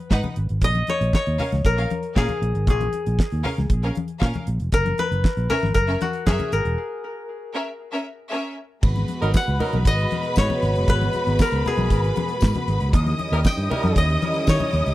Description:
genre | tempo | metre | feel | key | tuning
disco | 117 BPM | 4/4 | straight | G# minor from 8.8 s | A4 = 440 Hz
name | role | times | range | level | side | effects
koto | melody | 0.0-14.9 s | F#4 to G5 | -25 LUFS | left 2 dB | tape echo
bright studio string section | second line | 0.1-14.9 s | C#4 to D#6 | -28 LUFS | equal | none
fingered electric bass | bass | 0.1-14.9 s | E1 to D#3 | -22 LUFS | equal | none
damped 70s drum kit | drums | 0.1-14.9 s | crash cymbal, hi-hat, kick drum, snare drum | -19 LUFS | equal | none
congas | percussion | 0.1-14.7 s | none | -30 LUFS | left 4 dB | none
warm studio string section | sustained chords | 8.8-14.9 s | B2 to F#4 | -30 LUFS | right 2 dB | none
mellow horn section | stabs | 9.2-9.8, 13.3-14.0 s | F#3 to A#4 | -29 LUFS | right 2 dB | tape echo
tambourine | percussion | 9.3-14.6 s | none | -40 LUFS | left 10 dB | none
room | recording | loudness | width
small room ambience | dry, close 1970s-style studio recording | -19 LUFS | side -16 dB against mid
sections
0.0-8.8 A section; 8.8-14.9 B section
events
break 6.8-8.8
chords
0.0 G#m7; 0.6 A#m7; 4.7 F#7; 8.8 G#m7; 12.9 D#7b9

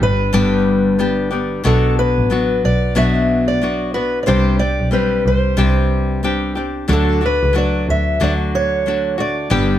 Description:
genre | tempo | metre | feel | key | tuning
acoustic pop | 92 BPM | 4/4 | swing 60% on 16ths | D major | A4 = 438 Hz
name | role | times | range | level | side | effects
fingerpicked steel-string acoustic guitar | melody | 0.0-9.8 s | A4 to E5 | -19 LUFS | equal | plate reverb
nylon-string guitar | accompaniment | 0.0-9.8 s | G2 to G4 | -18 LUFS | left 2 dB | none
warm double bass | bass | 0.0-9.8 s | G1 to D2 | -19 LUFS | right 1 dB | none
room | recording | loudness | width
light reverb | none | -14 LUFS | side -11 dB against mid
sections
0.0-9.8 A section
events
none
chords
0.0 G; 1.6 Bm; 4.3 Csus2; 6.9 D

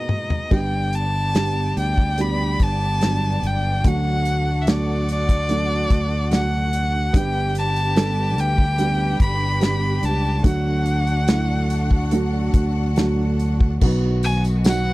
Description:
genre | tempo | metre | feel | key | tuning
pop ballad | 72 BPM | 4/4 | straight | unclear | A4 = 441 Hz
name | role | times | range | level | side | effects
warm violin | melody | 0.0-14.9 s | D5 to B5 | -25 LUFS | equal | none
dark upright piano | accompaniment | 0.0-14.9 s | G#1 to A4 | -25 LUFS | right 2 dB | none
rich studio string section | sustained chords | 0.0-14.9 s | B2 to A#5 | -31 LUFS | left 2 dB | none
natural country drum kit | drums | 0.1-14.8 s | crash cymbal, hi-hat, kick drum, snare drum, toms | -19 LUFS | equal | none
fingered electric bass | bass | 0.5-14.9 s | G1 to D2 | -22 LUFS | equal | none
tambourine | percussion | 13.8-14.8 s | none | -38 LUFS | left 5 dB | none
room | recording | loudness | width
little or no reverb | dry, close 1970s-style studio recording | -18 LUFS | side -18 dB against mid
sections
0.5-13.8 A section; 13.8-14.9 B section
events
drum fill 0.0-0.5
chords
0.0 G#madd9; 0.5 G; 3.8 D; 7.1 G; 10.4 D; 13.8 B

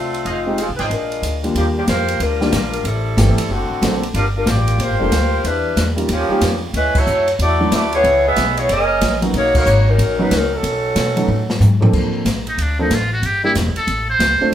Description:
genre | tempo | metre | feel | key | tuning
jazz, big band swing | 185 BPM | 4/4 | swing 64% on 8ths | unclear | A4 = 441 Hz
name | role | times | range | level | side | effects
mellow saxophone section | melody | 0.0-11.6 s | D3 to Fb5 | -18 LUFS | equal | none
upright bass | bass | 0.0-14.4 s | E1 to B2 | -20 LUFS | equal | none
open jazz drum kit | drums | 0.1-14.3 s | crash cymbal, hi-hat, kick drum, ride cymbal, snare drum, toms | -22 LUFS | equal | none
mellow trumpet section | stabs | 0.3-0.9 s | Ab4 to G5 | -27 LUFS | right 2 dB | none
warm baby grand piano | accompaniment | 0.5-14.5 s | Eb2 to C5 | -21 LUFS | equal | none
trumpet with metal mute | melody | 12.5-14.5 s | D4 to C5 | -18 LUFS | right 1 dB | none
room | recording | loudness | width
moderate large studio reverb, RT60 1.2 s | band playing live in one room | -14 LUFS | side -10 dB against mid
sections
0.0-1.6 A section; 1.6-11.9 B section; 11.9-14.5 C section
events
band accent 6.9, 9.5; drum fill 11.3-11.9; muted trumpet solo 11.9-14.5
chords
0.3 Fm7; 0.9 Bb6; 2.9 Am7; 3.5 D7b13; 4.1 Gm7; 5.4 Em7; 6.1 Eb9; 6.7 Dmaj9; 8.0 Dbm9; 8.7 Gb69; 9.3 Bmaj9; 10.6 B9; 11.9 Bbmaj9; 13.2 Em7b5; 13.9 Aaug

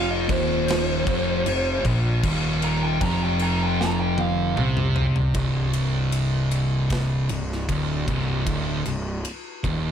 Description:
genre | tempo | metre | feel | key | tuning
stoner and doom metal | 77 BPM | 4/4 | straight | C minor | A4 = 442 Hz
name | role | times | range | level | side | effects
fuzz lead guitar | melody | 0.0-4.6 s | C5 to Bb5 | -26 LUFS | left 1 dB | distortion, slapback echo
ensemble organ-string | sustained chords | 0.0-5.3 s | F3 to F4 | -34 LUFS | right 1 dB | phaser, ensemble chorus
thick fuzz guitar | riff | 0.0-9.9 s | C2 to C3 | -26 LUFS | left 6 dB | distortion
thick fuzz guitar | riff | 0.0-9.9 s | C2 to C3 | -26 LUFS | right 7 dB | distortion
fuzz picked electric bass | bass | 0.0-9.9 s | C1 to C2 | -29 LUFS | equal | overdrive
big rock drum kit | drums | 0.3-9.8 s | crash cymbal, kick drum, ride cymbal, snare drum, toms | -28 LUFS | left 1 dB | none
room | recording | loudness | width
light reverb, small room ambience | none | -21 LUFS | side -8 dB against mid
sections
0.0-5.3 A section; 5.3-9.9 B section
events
lead electric guitar solo 0.0-5.3; drum fill 3.8-5.3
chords
0.0 F5; 5.3 Cm

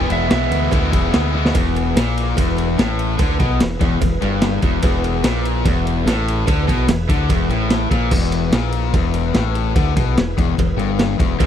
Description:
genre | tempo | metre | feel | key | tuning
classic rock | 146 BPM | 4/4 | straight | E mixolydian | A4 = 442 Hz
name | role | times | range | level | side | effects
electric slide guitar | melody | 0.0-0.7 s | E5 | -23 LUFS | right 9 dB | slapback echo
bright tonewheel organ | sustained chords | 0.0-11.5 s | E4 to B4 | -32 LUFS | equal | overdrive, chorus vibrato, slow rotary speaker
cranked stack guitar | riff | 0.0-11.5 s | E2 to E4 | -22 LUFS | left 14 dB | overdrive
raw garage guitar | riff | 0.0-8.1, 11.4-11.5 s | E2 to E4 | -25 LUFS | right 16 dB | overdrive
growling fingered electric bass | bass | 0.0-11.5 s | E1 to D2 | -21 LUFS | equal | overdrive
raw garage drum kit | drums | 0.1-11.5 s | crash cymbal, kick drum, ride cymbal, snare drum, toms | -19 LUFS | equal | none
cowbell | percussion | 0.3-11.5 s | none | -31 LUFS | right 16 dB | none
room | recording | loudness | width
little or no reverb | dry, close 1970s-style studio recording | -15 LUFS | side -10 dB against mid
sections
0.0-1.5 A section; 1.5-8.1 B section; 8.1-11.5 B section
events
electric slide guitar solo 0.0-1.5; drum fill 1.3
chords
0.0 E

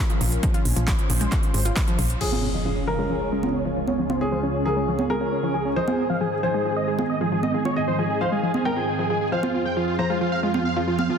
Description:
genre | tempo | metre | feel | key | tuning
uplifting trance | 135 BPM | 4/4 | straight | unclear | A4 = 440 Hz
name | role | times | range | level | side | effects
lush unison pad | sustained chords | 0.0-11.2 s | Db2 to Eb5 | -28 LUFS | equal | chorus, phaser, sidechain pumping
wide unison pluck | arpeggios | 0.1-11.1 s | F3 to F4 | -29 LUFS | left 2 dB | sidechain pumping, digital delay
big-room dance drum kit | drums | 0.1-11.1 s | congas, crash cymbal, handclaps, hi-hat | -28 LUFS | right 3 dB | overdrive
solid FM bass | bass | 0.2-2.2 s | Ab1 to Bb1 | -23 LUFS | equal | sidechain pumping
electronic kick drum | drums | 0.4-1.9 s | none | -23 LUFS | equal | overdrive
big supersaw lead | melody | 2.2-11.2 s | Db4 to Bb5 | -26 LUFS | right 1 dB | sidechain pumping, low-pass filter, digital delay
dark grand piano | second line | 2.2-10.6 s | Ab4 to G5 | -29 LUFS | left 1 dB | tape echo
impact | sound effects | 2.2-4.0 s | none | -30 LUFS | equal | none
room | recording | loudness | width
light reverb | dense, heavily limited modern master | -21 LUFS | side -7 dB against mid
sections
0.0-2.2 A section; 2.2-11.2 B section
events
filter sweep on analog synth pad 0.0-2.2; impact 2.2-4.0; filter sweep on supersaw synth 2.2-11.2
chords
0.0 Bbm; 2.2 Db; 5.8 Ab; 9.3 Fm

